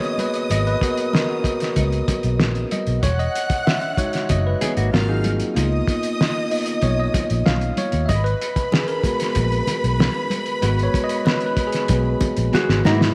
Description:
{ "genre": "lush 1970s-style soul", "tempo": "95 BPM", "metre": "4/4", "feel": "straight", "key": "G# minor", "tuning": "A4 = 441 Hz", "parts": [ { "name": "warm studio string section", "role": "second line", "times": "0.0-12.8 s", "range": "B4 to F#6", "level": "-30 LUFS", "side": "equal", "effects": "none" }, { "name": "bell-like tine electric piano", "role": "accompaniment", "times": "0.0-13.1 s", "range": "G#3 to E#5", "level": "-26 LUFS", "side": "equal", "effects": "none" }, { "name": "cloth-damped thuddy drum kit", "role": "drums", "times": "0.0-13.1 s", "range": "hi-hat, kick drum, snare drum", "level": "-25 LUFS", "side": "equal", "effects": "none" }, { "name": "congas", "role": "percussion", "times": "0.2-13.0 s", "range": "none", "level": "-32 LUFS", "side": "equal", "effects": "none" }, { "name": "vintage muted fingered electric bass", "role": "bass", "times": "0.5-13.1 s", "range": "E1 to G#2", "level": "-23 LUFS", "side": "equal", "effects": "transformer saturation" }, { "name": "mellow electric guitar", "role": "riff", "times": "4.6-5.5, 12.5-13.1 s", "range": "F#3 to G#4", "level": "-29 LUFS", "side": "equal", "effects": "none" }, { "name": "vintage hollow-body jazz guitar", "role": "melody", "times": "12.5-13.1 s", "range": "E4 to F#4", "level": "-22 LUFS", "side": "equal", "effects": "none" } ], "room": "light reverb, studio reverb", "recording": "none", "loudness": "-20 LUFS", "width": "mono", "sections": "0.0-13.1 A section", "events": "tine electric piano solo 0.0-13.1; drum fill 12.5-13.1", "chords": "0.0 G#m9; 3.0 Emaj9; 4.9 G#13; 5.6 C#13; 8.1 G#m9" }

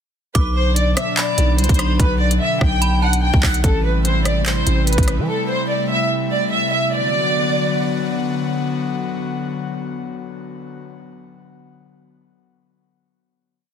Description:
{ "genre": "hip hop, drill", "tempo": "146 BPM", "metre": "4/4", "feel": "half-time", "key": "B phrygian", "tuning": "A4 = 440 Hz", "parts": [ { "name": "metallic FM bell", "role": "second line", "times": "0.3-3.2 s", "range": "A5 to D6", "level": "-28 LUFS", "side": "right 2 dB", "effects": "chorus, phaser, tape echo" }, { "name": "dark studio violin section", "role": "melody", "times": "0.4-8.1 s", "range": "A4 to G5", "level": "-21 LUFS", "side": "equal", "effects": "none" }, { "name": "airy breathy pad", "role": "sustained chords", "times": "0.4-10.8 s", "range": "B2 to F#4", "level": "-23 LUFS", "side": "left 2 dB", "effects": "chorus" }, { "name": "growling 808-style bass", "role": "bass", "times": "0.4-5.3 s", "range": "A1 to E3", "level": "-18 LUFS", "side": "equal", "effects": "none" }, { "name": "drill drum kit", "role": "drums", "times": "0.4-5.2 s", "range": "handclaps, hi-hat, kick drum, rim click", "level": "-18 LUFS", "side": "equal", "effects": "none" } ], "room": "light reverb, digital ambience", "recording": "dense, heavily limited modern master", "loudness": "-16 LUFS", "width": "side -8 dB against mid", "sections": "0.4-6.9 hook; 6.9-10.2 final chord", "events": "none", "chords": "0.4 Bm; 3.6 Am7; 6.9 Bm" }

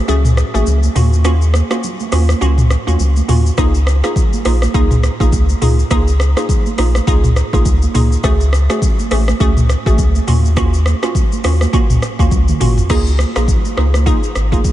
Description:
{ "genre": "afrobeats", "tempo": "103 BPM", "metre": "4/4", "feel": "swing 58% on 16ths", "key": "Db major", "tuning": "A4 = 440 Hz", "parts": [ { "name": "glassy wavetable pluck", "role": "accompaniment", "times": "0.0-14.7 s", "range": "A3 to Ab4", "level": "-19 LUFS", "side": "right 1 dB", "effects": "chorus" }, { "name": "warm sub bass", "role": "bass", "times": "0.1-14.6 s", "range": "Ab1 to Eb2", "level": "-13 LUFS", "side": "equal", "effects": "none" }, { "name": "afro-pop drum kit", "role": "drums", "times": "0.1-14.7 s", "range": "crash cymbal, hi-hat, kick drum, rim click, shaker, toms", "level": "-16 LUFS", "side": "equal", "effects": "overdrive" }, { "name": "congas", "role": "percussion", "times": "0.1-14.7 s", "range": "none", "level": "-26 LUFS", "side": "right 8 dB", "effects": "none" } ], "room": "light reverb, digital ambience", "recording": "nothing above 10.4 kHz", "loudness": "-11 LUFS", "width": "side -14 dB against mid", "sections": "0.0-12.9 A section; 12.9-14.7 B section", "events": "break 0.0-3.6; drum fill 12.3-12.9", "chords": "0.0 Gbmadd9; 1.0 Ebm7; 3.6 Db6; 8.2 Gbmadd9; 10.3 Ebm7; 12.9 Db6" }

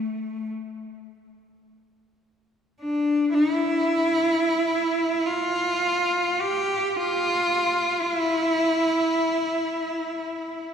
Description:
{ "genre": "caucasian folk, Caucasian lament", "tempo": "free time", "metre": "none", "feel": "none", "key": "unclear", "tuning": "A4 = 440 Hz", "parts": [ { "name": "clear cello", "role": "solo", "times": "0.0-10.6 s", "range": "A3 to G4", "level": "-22 LUFS", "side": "equal", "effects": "tape echo" } ], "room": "wet lush hall reverb, RT60 2.9 s", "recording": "dreamy mix soaked in reverb", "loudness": "-21 LUFS", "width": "side -7 dB against mid", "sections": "0.0-2.3 A section; 2.3-10.7 A section", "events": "none", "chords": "none" }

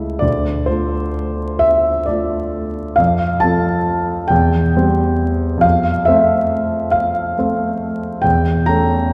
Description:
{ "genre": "classical, romantic nocturne for solo piano", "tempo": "45 BPM (dotted quarters)", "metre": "6/8", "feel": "uneven beats, rubato", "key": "D minor", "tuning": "A4 = 440 Hz", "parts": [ { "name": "warm concert grand piano", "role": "solo", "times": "0.0-9.1 s", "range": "C#2 to Bb5", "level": "-17 LUFS", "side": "equal", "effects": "none" } ], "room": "wet concert hall reverb, RT60 2.1 s", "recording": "heard from further back in the room, vinyl crackle", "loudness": "-17 LUFS", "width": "mono", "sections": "0.0-9.1 A section", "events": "none", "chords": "0.2 Dm; 3.0 F; 4.3 C/E; 5.6 F; 8.2 A/E" }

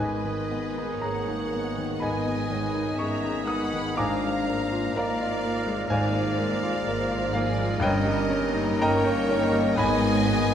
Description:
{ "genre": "classical", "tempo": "56-65 BPM", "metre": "4/4", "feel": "rubato", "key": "G# minor", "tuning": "A4 = 440 Hz", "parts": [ { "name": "clear grand piano", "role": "melody", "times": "0.0-10.5 s", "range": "G2 to D#6", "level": "-28 LUFS", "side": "left 1 dB", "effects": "none" }, { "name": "rich studio violin section", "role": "melody", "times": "0.0-10.5 s", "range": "D5 to B5", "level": "-36 LUFS", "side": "left 3 dB", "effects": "none" }, { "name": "dark clarinet", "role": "second line", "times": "0.0-10.5 s", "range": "A#3 to C#4", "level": "-36 LUFS", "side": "equal", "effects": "none" }, { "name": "rich studio violin section", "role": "second line", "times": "0.0-10.5 s", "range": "G#4 to F#5", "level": "-34 LUFS", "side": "left 2 dB", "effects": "none" }, { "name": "warm oboe", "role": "second line", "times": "0.0-10.5 s", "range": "G#4 to A#4", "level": "-36 LUFS", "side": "right 3 dB", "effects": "none" }, { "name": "mellow bassoon", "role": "accompaniment", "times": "0.0-10.5 s", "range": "D#3 to E#3", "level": "-34 LUFS", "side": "right 3 dB", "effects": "none" }, { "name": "mellow French horn section", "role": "sustained chords", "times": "0.0-10.5 s", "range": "E#3 to D#4", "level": "-33 LUFS", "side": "left 3 dB", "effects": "none" }, { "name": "rich studio cello section", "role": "bass", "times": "0.0-10.5 s", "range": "G2 to G#2", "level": "-33 LUFS", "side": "right 4 dB", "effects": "none" }, { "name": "rich studio double bass section", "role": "bass", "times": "0.0-10.5 s", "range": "G1 to G#1", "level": "-34 LUFS", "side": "right 3 dB", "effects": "none" }, { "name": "rich studio viola section", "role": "accompaniment", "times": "0.5-10.5 s", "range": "G#3 to G#4", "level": "-36 LUFS", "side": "right 2 dB", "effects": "none" }, { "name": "mellow hollow concert flute", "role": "second line", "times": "2.0-10.5 s", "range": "A#4 to E#5", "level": "-36 LUFS", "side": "left 2 dB", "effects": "none" } ], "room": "wet scoring stage reverb, RT60 1.6 s", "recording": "none", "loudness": "-23 LUFS", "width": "side -9 dB against mid", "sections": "0.0-10.5 A section", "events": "none", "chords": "0.0 G#m; 4.0 A#7/G#; 7.8 D#7/G; 9.8 G#m" }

